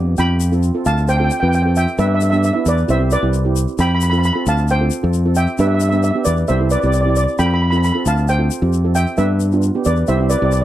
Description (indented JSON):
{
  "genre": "calypso",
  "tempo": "133 BPM",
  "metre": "4/4",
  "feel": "straight",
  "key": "unclear",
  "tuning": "A4 = 438 Hz",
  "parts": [
    { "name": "steel pan", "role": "melody", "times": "0.0-10.6 s", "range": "B4 to B5", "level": "-20 LUFS", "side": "right 1 dB", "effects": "none" },
    { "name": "steel pan", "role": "accompaniment", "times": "0.0-10.5 s", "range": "B3 to B4", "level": "-22 LUFS", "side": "right 4 dB", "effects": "none" },
    { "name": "modern bright fingered electric bass", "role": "bass", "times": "0.0-10.6 s", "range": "C2 to G2", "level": "-16 LUFS", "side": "left 1 dB", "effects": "none" },
    { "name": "tube shaker", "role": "percussion", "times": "0.2-10.6 s", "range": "none", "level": "-31 LUFS", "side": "left 20 dB", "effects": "none" }
  ],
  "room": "little or no reverb",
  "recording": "dry, close 1970s-style studio recording",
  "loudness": "-14 LUFS",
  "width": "side -13 dB against mid",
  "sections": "0.2-10.6 A section",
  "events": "none",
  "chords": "0.2 Fadd9; 2.0 G; 2.9 Cadd9; 3.8 Fadd9; 5.6 G; 6.5 C; 7.4 Fadd9; 9.2 G; 10.1 C"
}